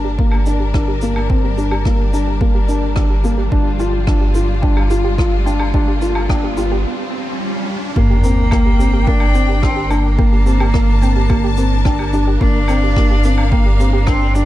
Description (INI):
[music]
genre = piano and strings electronica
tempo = 108 BPM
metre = 4/4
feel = straight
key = G minor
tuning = A4 = 440 Hz
[part]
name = warm symphonic string section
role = sustained chords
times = 0.0-14.5 s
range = G3 to A5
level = -25 LUFS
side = left 3 dB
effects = none
[part]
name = soft round pluck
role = arpeggios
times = 0.0-14.4 s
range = G4 to G5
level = -29 LUFS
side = right 5 dB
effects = chorus, sidechain pumping, tape echo
[part]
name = felt-muted upright piano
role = riff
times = 0.0-14.5 s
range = Bb3 to F4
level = -21 LUFS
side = left 2 dB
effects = tape echo
[part]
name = round analog bass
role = bass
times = 0.0-14.5 s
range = G1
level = -18 LUFS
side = equal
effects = sidechain pumping
[part]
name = riser, swell and sub drop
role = sound effects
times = 2.8-10.2 s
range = none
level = -25 LUFS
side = right 1 dB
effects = none
[part]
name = electronic kick drum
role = drums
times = 0.2-14.2 s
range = none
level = -17 LUFS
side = equal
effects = none
[part]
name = woodblock, shaker and rim click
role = drums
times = 0.3-14.5 s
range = none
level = -28 LUFS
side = left 1 dB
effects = none
[part]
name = bright cello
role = melody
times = 8.0-14.5 s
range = Bb3 to D4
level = -21 LUFS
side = equal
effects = none
[sound]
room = light reverb, small room ambience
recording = dark, warm production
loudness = -13 LUFS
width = side -14 dB against mid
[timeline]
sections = 0.0-8.0 A section; 8.0-14.5 B section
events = build-up 0.0-8.0; filter sweep on synth arpeggio sound 0.0-8.0; riser 2.8-8.0; break 6.9-8.0; swell 6.9-8.0; drop 8.0-14.5; impact 8.0-10.2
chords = 0.0 Gm; 3.5 Dm/G; 8.0 Gm; 12.4 Bb/G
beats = 0.19 0.74 | 1.30 1.85 2.41 2.96 | 3.52 4.07 4.63 5.19 | 5.74 6.30 6.85 7.41 | 7.96 8.52 9.07 9.63 | 10.19 10.74 11.30 11.85 | 12.41 12.96 13.52 14.07